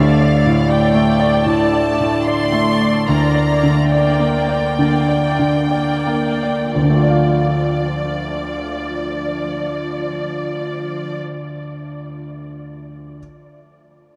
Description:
classical, romantic movement for piano and orchestra; 55-84 BPM; 4/4; rubato; D minor; A4 = 442 Hz
clear concert grand piano; melody; 0.0-13.2 s; D2 to F5; -19 LUFS; equal
rich studio violin section; melody; 0.0-11.2 s; D5 to C6; -27 LUFS; equal
clear studio viola section; accompaniment; 0.0-11.2 s; F3 to D5; -26 LUFS; equal
wet huge ambient reverb, RT60 8.6 s; in a vast, echoing space; -17 LUFS; mono
0.0-6.7 A section; 6.7-10.4 B section
slowing down 0.0-6.7
0.0 Dm; 3.1 Gm/D; 6.7 Dm

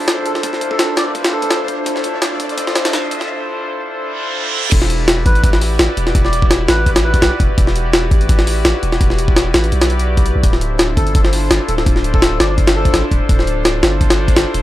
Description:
drum and bass, jungle; 168 BPM; 4/4; swing 54% on 16ths; E phrygian; A4 = 440 Hz
warbly tape-like pad; sustained chords; 0.0-14.6 s; D4 to D5; -21 LUFS; left 1 dB; chorus, built-in reverb, vintage 12-bit sampler grit
riser and reverse cymbal; sound effects; 0.2-4.7 s; -25 LUFS; right 3 dB
jungle sampler-style drum kit; drums; 0.1-14.6 s; crash cymbal, hi-hat, kick drum, snare drum; -14 LUFS; equal; high-pass filter on kick, high-pass filter on hats, high-pass filter on snare, high-pass filter on cymbals
melodica; melody; 0.3-1.6, 5.3-7.3, 11.0-13.0 s; A4 to D5; -24 LUFS; right 1 dB; dub echo
long sustained 808-style bass; bass; 4.7-14.6 s; D1 to B1; -18 LUFS; equal
little or no reverb; dry, gritty hardware recording, high-pass filter; -12 LUFS; side -15 dB against mid
0.0-4.7 A section; 4.7-14.6 B section
build-up 0.0-4.7; riser 0.2-3.3; filter sweep 0.0-4.7; break 3.3-4.7; reverse cymbal 4.2-4.7; drop 4.7-14.6
0.0 Dm9; 4.7 Em9; 10.4 Dm9

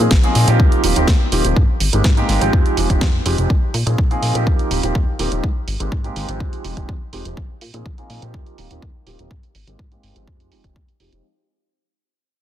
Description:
filtered disco house; 124 BPM; 4/4; straight; A4 = 442 Hz
dark baby grand piano; accompaniment; 0.0-11.2 s; F3 to Ab4; -22 LUFS; right 2 dB; phaser, vintage 12-bit sampler grit, sidechain pumping, low-pass filter
plucky analog bass; bass; 0.0-11.2 s; Eb1 to Bb2; -20 LUFS; left 1 dB; sidechain pumping, low-pass filter
electronic kick drum; drums; 0.1-10.9 s; -17 LUFS; equal
house drum kit; drums; 0.1-11.2 s; hi-hat, snare drum; -23 LUFS; right 2 dB; sidechain pumping on hats, low-pass filter on hats, low-pass filter on snare, low-pass filter on room
little or no reverb; dense, heavily limited modern master; -15 LUFS; side -11 dB against mid
0.0-11.2 A section
fade-out 0.0-11.2; filter sweep 0.0-11.2
0.0 Bb9sus4; 0.6 Eb69; 1.6 Abmaj9; 2.5 Fm9; 3.5 Bb9sus4; 4.5 Eb69; 5.4 Abmaj9; 6.4 Fm9; 7.4 Bb9sus4; 8.3 Eb69; 9.3 Abmaj9; 10.3 Fm9

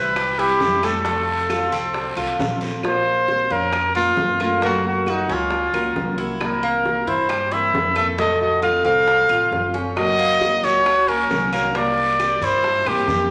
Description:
latin, Cuban son and guajira; 135 BPM; 4/4; straight; Bb harmonic minor; A4 = 445 Hz
clear trumpet; melody; 0.0-13.3 s; Eb4 to F5; -21 LUFS; equal
nylon-string guitar; second line; 0.0-13.3 s; Gb3 to A4; -30 LUFS; equal
picked steel-string acoustic guitar; accompaniment; 0.0-13.3 s; C3 to C5; -32 LUFS; equal
Cuban tres; arpeggios; 0.0-13.3 s; A3 to Bb4; -29 LUFS; equal
upright bass; bass; 0.0-13.3 s; Gb1 to G2; -34 LUFS; equal
bongos; percussion; 0.2-13.3 s; -32 LUFS; equal
claves; percussion; 0.2-13.1 s; -39 LUFS; equal
guiro; percussion; 0.2-2.8, 10.0-13.3 s; -37 LUFS; equal
wet large studio reverb, RT60 1.3 s; -20 LUFS; mono
0.0-2.8 A section; 2.8-13.3 A section
0.0 C; 1.1 F; 2.8 Bbmadd9; 4.6 Gb; 6.4 C7; 8.2 F; 10.0 Gb; 11.7 C7

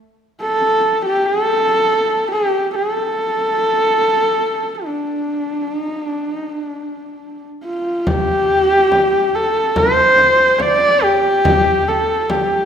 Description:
mongolian traditional, Mongolian folk; 71 BPM; 4/4; straight; D yu mode; A4 = 440 Hz
dark horsehead fiddle; melody; 0.4-12.7 s; D4 to D5; -14 LUFS; equal
frame drum; percussion; 8.1-12.5 s; -22 LUFS; equal
wet scoring stage reverb, RT60 1.4 s; minimal, uncompressed stereo recording; -14 LUFS; side -8 dB against mid
0.0-8.1 A section; 8.1-12.7 B section

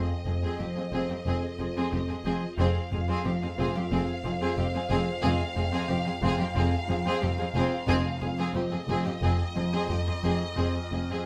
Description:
cinematic, suspense film score; 90 BPM; 4/4; straight; F minor; A4 = 440 Hz
rich studio violin section; melody; 0.0-11.3 s; Eb5 to F5; -39 LUFS; equal
clear studio violin section; second line; 0.0-11.3 s; G4 to Ab4; -37 LUFS; equal
rich chamber viola section; accompaniment; 0.0-11.3 s; C4; -37 LUFS; equal
smooth synth bass; riff; 0.0-11.1 s; F2 to F3; -33 LUFS; equal
overtone-sweeping drone; drone; 0.0-11.3 s; F2; -40 LUFS; equal; chorus, built-in reverb
rich studio cello section; bass; 0.3-11.2 s; F2; -37 LUFS; equal
rich studio double bass section; bass; 0.3-11.0 s; F1; -36 LUFS; equal
timpani; percussion; 7.9-8.8 s; F2; -36 LUFS; equal
moderate stone room reverb, RT60 1.0 s; -28 LUFS; mono
0.0-11.3 A section
0.0 Ab6/F

